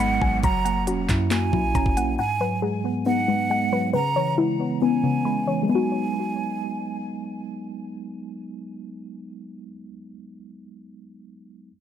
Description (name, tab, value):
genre	hip hop, trap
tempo	137 BPM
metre	4/4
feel	half-time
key	G# minor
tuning	A4 = 440 Hz
part	breathy hollow jazz flute	second line	0.0-7.0 s	F#5 to A#5	-27 LUFS	right 4 dB	ping-pong delay
part	mellow tine electric piano	accompaniment	0.0-11.7 s	G#2 to F#4	-28 LUFS	right 2 dB	medium stereo tremolo, low-pass filter
part	soft round pluck	arpeggios	0.0-9.8 s	C#3 to B5	-25 LUFS	left 7 dB	chorus, low-pass filter, ping-pong delay
part	warm 808-style bass	bass	0.0-2.2 s	E1 to F#2	-27 LUFS	right 1 dB	none
part	trap drum kit	drums	0.0-2.1 s	handclaps, hi-hat, kick drum	-25 LUFS	right 1 dB	none
part	downlifter	sound effects	0.0-2.2 s	none	-40 LUFS	right 1 dB	none
room	light reverb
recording	none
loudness	-21 LUFS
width	side -9 dB against mid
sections	0.0-5.7 A section; 5.7-9.2 B section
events	filter sweep 0.0-5.7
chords	0.4 F#7; 2.2 G#m7; 3.9 C#m7; 5.7 G#m7